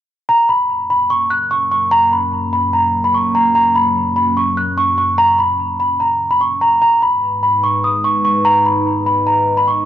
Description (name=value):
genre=hip hop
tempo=147 BPM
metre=4/4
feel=half-time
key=F# major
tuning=A4 = 439 Hz
part: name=celesta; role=melody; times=0.3-9.9 s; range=A#5 to F#6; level=-13 LUFS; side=equal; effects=low-pass filter, analog delay
part: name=dark analog pad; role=sustained chords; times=1.0-9.9 s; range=F#2 to B4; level=-22 LUFS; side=equal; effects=chorus, phaser
room=light reverb, studio ambience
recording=dry, gritty hardware recording, transformer saturation, cassette tape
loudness=-12 LUFS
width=side -11 dB against mid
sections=0.3-9.9 A section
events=none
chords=0.3 F#; 6.8 G#m